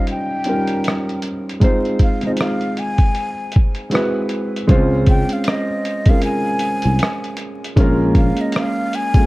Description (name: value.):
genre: lo-fi hip hop.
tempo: 78 BPM.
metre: 4/4.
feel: swing 60% on 16ths.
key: Db lydian.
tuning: A4 = 438 Hz.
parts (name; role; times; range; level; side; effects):
breathy mellow silver concert flute; melody; 0.0-9.3 s; Eb5 to Ab5; -25 LUFS; left 1 dB; low-pass filter, tape echo.
felt-muted upright piano; accompaniment; 0.0-9.3 s; G3 to C5; -20 LUFS; equal; cassette tape, low-pass filter.
lo-fi sampler-style drum kit; drums; 0.1-9.3 s; hi-hat, kick drum, rim click; -16 LUFS; equal; vintage 12-bit sampler grit.
sustaining fretless electric bass; bass; 4.7-8.3 s; Bb1 to Db2; -17 LUFS; equal; analog chorus.
room: light reverb, digital ambience.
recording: dark, warm production, vinyl crackle.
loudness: -15 LUFS.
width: side -20 dB against mid.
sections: 0.0-4.7 A section; 4.7-9.3 B section.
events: filter sweep 0.0-4.7.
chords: 0.0 Eb13; 1.6 Fm7; 3.9 Ab7alt; 4.7 Dbmaj7; 7.8 Bbm7.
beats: 0.08 0.85 | 1.62 2.39 3.16 3.93 | 4.70 5.47 6.24 7.00 | 7.77 8.54.